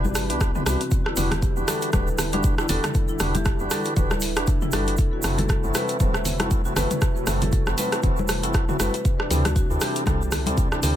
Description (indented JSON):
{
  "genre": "afro house",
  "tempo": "118 BPM",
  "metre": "4/4",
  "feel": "swing 57% on 16ths",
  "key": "E minor",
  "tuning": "A4 = 443 Hz",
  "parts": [
    { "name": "warm analog pad", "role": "sustained chords", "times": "0.0-11.0 s", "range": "C3 to B4", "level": "-32 LUFS", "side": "right 1 dB", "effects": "wide subtle chorus, sidechain pumping" },
    { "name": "marimba with medium hard mallets", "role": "arpeggios", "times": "0.0-11.0 s", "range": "B3 to C5", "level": "-30 LUFS", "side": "left 3 dB", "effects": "sidechain pumping, ping-pong delay" },
    { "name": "tonewheel organ", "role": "stabs", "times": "0.0-11.0 s", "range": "C4 to B4", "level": "-30 LUFS", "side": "right 1 dB", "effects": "overdrive, stopped rotary speaker, sidechain pumping, ping-pong delay" },
    { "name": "woody FM bass", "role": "bass", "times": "0.0-10.9 s", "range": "D1 to D2", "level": "-28 LUFS", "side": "equal", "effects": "sidechain pumping" },
    { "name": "congas", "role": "percussion", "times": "0.0-10.9 s", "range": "none", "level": "-31 LUFS", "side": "left 2 dB", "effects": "none" },
    { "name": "egg shaker", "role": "percussion", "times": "0.0-10.9 s", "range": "none", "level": "-34 LUFS", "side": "right 6 dB", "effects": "none" },
    { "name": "deep house drum kit", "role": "drums", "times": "0.2-10.9 s", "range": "hi-hat, rim click, toms", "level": "-27 LUFS", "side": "equal", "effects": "none" },
    { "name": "electronic kick drum", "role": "drums", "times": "0.4-10.7 s", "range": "none", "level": "-22 LUFS", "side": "equal", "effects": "none" }
  ],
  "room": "digital ambience",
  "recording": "none",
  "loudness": "-20 LUFS",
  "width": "side -11 dB against mid",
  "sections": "0.0-11.0 A section",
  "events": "none",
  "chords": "0.0 Cmaj7; 0.9 Em7; 5.0 F#m7b5; 9.1 D9sus4",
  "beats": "0.41 | 0.92 1.42 1.93 2.44 | 2.95 3.46 3.97 4.47 | 4.98 5.49 6.00 6.51 | 7.02 7.53 8.03 8.54 | 9.05 9.56 10.07 10.58"
}